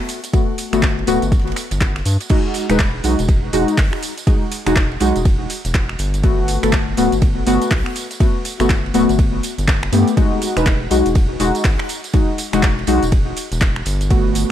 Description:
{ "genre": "deep house", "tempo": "122 BPM", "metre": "4/4", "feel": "swing 61% on 16ths", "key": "unclear", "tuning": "A4 = 440 Hz", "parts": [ { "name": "big rock drum kit", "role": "drums", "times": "0.1-14.5 s", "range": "hi-hat, ride cymbal, snare drum", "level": "-38 LUFS", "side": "right 4 dB", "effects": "none" }, { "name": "deep house drum kit", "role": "drums", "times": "0.1-14.5 s", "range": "crash cymbal, finger snaps, handclaps, hi-hat, ride cymbal, tambourine", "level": "-25 LUFS", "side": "right 1 dB", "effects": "studio reverb" }, { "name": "deep mellow chord stab", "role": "stabs", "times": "0.3-14.5 s", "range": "G#3 to B4", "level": "-19 LUFS", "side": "left 2 dB", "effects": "chorus, sidechain pumping, tape echo" }, { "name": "electronic kick drum", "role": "drums", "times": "0.3-14.2 s", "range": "none", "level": "-16 LUFS", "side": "equal", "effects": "studio reverb" }, { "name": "round analog bass", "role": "bass", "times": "0.7-14.4 s", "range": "D1 to G2", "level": "-21 LUFS", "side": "equal", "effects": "sidechain pumping" } ], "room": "studio reverb", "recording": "none", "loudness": "-14 LUFS", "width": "side -11 dB against mid", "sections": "0.0-14.5 A section", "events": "none", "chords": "0.0 Gmaj9; 2.3 Emaj9; 6.0 Gmaj9; 10.2 Emaj9; 13.9 Gmaj9" }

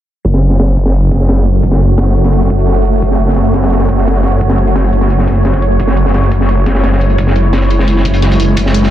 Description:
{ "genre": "dark technical drum and bass", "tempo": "173 BPM", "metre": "4/4", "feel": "straight", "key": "F# minor", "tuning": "A4 = 442 Hz", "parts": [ { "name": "swarming drone", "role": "sustained chords", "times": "1.3-8.9 s", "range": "G#3 to C#5", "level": "-15 LUFS", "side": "right 1 dB", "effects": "built-in reverb, vintage 12-bit sampler grit, sidechain pumping" }, { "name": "snarling distorted saw bass", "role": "bass", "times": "0.2-8.9 s", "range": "F#1", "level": "-11 LUFS", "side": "equal", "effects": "distortion, tube saturation, sidechain pumping" }, { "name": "crunchy breakbeat drum kit", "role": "drums", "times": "0.2-8.9 s", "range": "hi-hat, snare drum", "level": "-18 LUFS", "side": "equal", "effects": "high-pass filter on hats, high-pass filter on snare, high-pass filter on room" }, { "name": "electronic hi-hat", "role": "drums", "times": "0.2-8.8 s", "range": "none", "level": "-30 LUFS", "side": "left 3 dB", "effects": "low-pass filter on hats, low-pass filter on room" }, { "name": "electronic kick drum", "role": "drums", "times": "0.2-8.6 s", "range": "none", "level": "-22 LUFS", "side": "equal", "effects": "high-pass filter on kick, high-pass filter on room" } ], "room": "small room ambience", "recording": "dense, heavily limited modern master, low-pass filter", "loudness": "-9 LUFS", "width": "side -12 dB against mid", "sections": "0.2-8.9 A section", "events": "filter sweep on drum 0.2-8.9; filter sweep 0.2-8.9", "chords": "0.2 F#m; 5.8 E6/F#" }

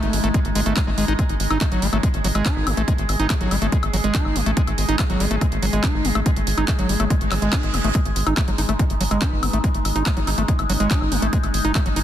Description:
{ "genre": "psychedelic trance", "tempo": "142 BPM", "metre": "4/4", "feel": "straight", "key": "unclear", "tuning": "A4 = 440 Hz", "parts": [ { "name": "overtone-sweeping drone", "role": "sustained chords", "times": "0.0-12.0 s", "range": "G#3 to G#4", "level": "-27 LUFS", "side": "equal", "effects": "chorus, built-in reverb, sidechain pumping" }, { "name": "overdriven acid bass", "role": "riff", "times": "0.0-12.0 s", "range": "F#3 to D#4", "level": "-24 LUFS", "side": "moving between left 3 dB and right 3 dB", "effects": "distortion, auto-pan, sidechain pumping, ping-pong delay" }, { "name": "tight sequencer bass", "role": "bass", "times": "0.0-12.0 s", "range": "F#1 to A1", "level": "-23 LUFS", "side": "equal", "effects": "none" }, { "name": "techno drum kit", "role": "drums", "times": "0.0-12.0 s", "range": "handclaps, hi-hat, woodblock", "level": "-27 LUFS", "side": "left 1 dB", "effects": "none" }, { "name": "electronic kick drum", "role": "drums", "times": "0.3-11.8 s", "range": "none", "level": "-22 LUFS", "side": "equal", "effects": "none" }, { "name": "vowel-sweep wobble bass", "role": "second line", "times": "2.5-3.5, 9.2-11.1 s", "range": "G#3 to D#4", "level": "-40 LUFS", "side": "right 2 dB", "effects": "none" }, { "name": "reverse cymbal", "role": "sound effects", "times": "7.2-7.9 s", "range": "none", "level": "-32 LUFS", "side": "right 6 dB", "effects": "none" } ], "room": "light reverb, digital ambience", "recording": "dense, heavily limited modern master", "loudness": "-18 LUFS", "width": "side -11 dB against mid", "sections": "0.0-12.0 A section", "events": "reverse cymbal 7.2-7.9", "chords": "0.0 G#5" }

